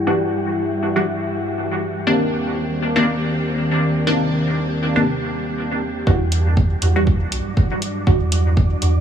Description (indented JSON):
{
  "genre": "dub techno",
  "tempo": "120 BPM",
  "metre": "4/4",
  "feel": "swing 56% on 16ths",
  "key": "E minor",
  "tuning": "A4 = 442 Hz",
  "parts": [
    { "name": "dark analog pad", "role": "sustained chords", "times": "0.0-9.0 s", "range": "Eb3 to F#5", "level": "-24 LUFS", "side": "equal", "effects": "chorus, sidechain pumping" },
    { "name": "wind-like tuned noise texture", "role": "texture", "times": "0.0-9.0 s", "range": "G3 to D5", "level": "-30 LUFS", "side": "equal", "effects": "built-in reverb, sidechain pumping" },
    { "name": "filtered dub chord stab", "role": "stabs", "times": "0.1-8.9 s", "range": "C3 to F#4", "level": "-21 LUFS", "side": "equal", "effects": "chorus, phaser, sidechain pumping, dub echo" },
    { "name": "warm sub bass", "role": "bass", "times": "6.1-9.0 s", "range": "B1 to E2", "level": "-18 LUFS", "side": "right 1 dB", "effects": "sidechain pumping" },
    { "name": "electronic kick drum", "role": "drums", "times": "6.1-8.7 s", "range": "none", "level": "-17 LUFS", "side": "right 1 dB", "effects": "none" },
    { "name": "electronic hi-hat", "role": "drums", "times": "6.3-8.9 s", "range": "none", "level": "-26 LUFS", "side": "right 1 dB", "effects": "none" }
  ],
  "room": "moderate huge ambient reverb, RT60 7.4 s",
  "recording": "low-pass filter, small room ambience",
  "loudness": "-17 LUFS",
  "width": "side -8 dB against mid",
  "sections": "0.0-6.1 A section; 6.1-9.0 B section",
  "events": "filter sweep 0.0-6.1",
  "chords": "0.0 Em9; 2.1 Cm9; 6.1 Em9"
}